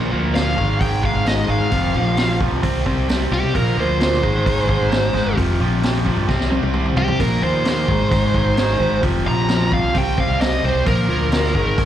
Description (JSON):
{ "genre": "classic rock", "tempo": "131 BPM", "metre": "4/4", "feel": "straight", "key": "unclear", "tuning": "A4 = 440 Hz", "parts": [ { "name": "biting overdriven guitar", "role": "riff", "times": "0.0-11.9 s", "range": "F2 to C4", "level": "-21 LUFS", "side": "equal", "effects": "slapback echo" }, { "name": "fuzz fingered electric bass", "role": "bass", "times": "0.0-11.9 s", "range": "F1 to C3", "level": "-21 LUFS", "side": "equal", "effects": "overdrive" }, { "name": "bluesy overdriven lead guitar", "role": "melody", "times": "0.4-11.9 s", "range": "G4 to Bb5", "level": "-21 LUFS", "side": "right 1 dB", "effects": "distortion, slapback echo" }, { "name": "vintage drum kit", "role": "drums", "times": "0.4-11.9 s", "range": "hi-hat, kick drum, snare drum, toms", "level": "-23 LUFS", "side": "equal", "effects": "none" } ], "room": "little or no reverb", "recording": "live gig heard through the venue's PA, club reverb", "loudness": "-16 LUFS", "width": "side -11 dB against mid", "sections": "0.0-11.9 A section", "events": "lead electric guitar solo 0.0-11.9; drum fill 6.3-7.2", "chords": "0.0 Bb; 0.6 Ab5; 1.7 F5; 2.6 C5; 3.6 Bb; 4.2 Ab; 5.4 F5; 6.3 C5; 7.2 Bb5; 7.9 Ab; 9.0 F5; 10.0 C5; 10.9 Bb", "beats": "0.35 0.81 1.27 | 1.72 2.18 2.64 3.09 | 3.55 4.01 4.46 4.92 | 5.38 5.83 6.29 6.75 | 7.21 7.66 8.12 8.58 | 9.04 9.49 9.95 10.41 | 10.87 11.32 11.78" }